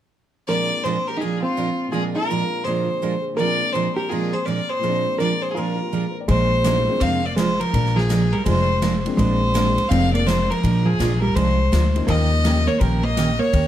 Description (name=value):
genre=country, western swing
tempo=165 BPM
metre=4/4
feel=swing 64% on 8ths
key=Bb mixolydian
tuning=A4 = 441 Hz
part: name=clear fiddle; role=melody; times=0.5-13.7 s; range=F4 to F5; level=-23 LUFS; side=equal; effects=none
part: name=hollow-body jazz guitar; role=second line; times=0.5-13.7 s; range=F3 to Bb4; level=-25 LUFS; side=right 1 dB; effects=none
part: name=dark upright piano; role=accompaniment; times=0.5-12.7 s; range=Bb2 to D5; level=-29 LUFS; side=left 6 dB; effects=none
part: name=picked steel-string acoustic guitar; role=accompaniment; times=0.5-13.7 s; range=Bb2 to Bb4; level=-25 LUFS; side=right 5 dB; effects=none
part: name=upright bass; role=bass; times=6.3-13.7 s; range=F1 to Eb2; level=-21 LUFS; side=left 1 dB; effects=none
part: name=swinging big-band drum kit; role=drums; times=6.3-13.6 s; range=hi-hat, kick drum, ride cymbal, snare drum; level=-28 LUFS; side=left 2 dB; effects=none
room=light reverb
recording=none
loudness=-18 LUFS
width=side -11 dB against mid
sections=0.5-6.3 A section; 6.3-13.7 B section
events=none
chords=0.5 Bb9; 12.1 Eb9